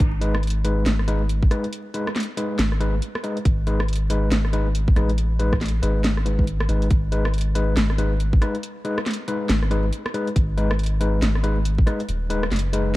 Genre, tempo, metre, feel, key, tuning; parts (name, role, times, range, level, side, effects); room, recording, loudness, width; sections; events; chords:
deep dubstep; 139 BPM; 4/4; swing 61% on 16ths, half-time; G# phrygian; A4 = 440 Hz
soft dub sub bass; bass; 0.0-13.0 s; D#1 to A1; -22 LUFS; equal
electronic kick drum; drums; 0.0-11.9 s; -19 LUFS; equal
garage drum kit; drums; 0.0-12.8 s; hi-hat, rim click, snare drum; -27 LUFS; equal
overdriven tine electric piano; stabs; 0.2-12.9 s; G#3 to B4; -26 LUFS; left 2 dB; fast tremolo, dub echo
light reverb; dark, warm production, vinyl crackle; -19 LUFS; side -18 dB against mid
0.0-13.0 A section
0.0 G#m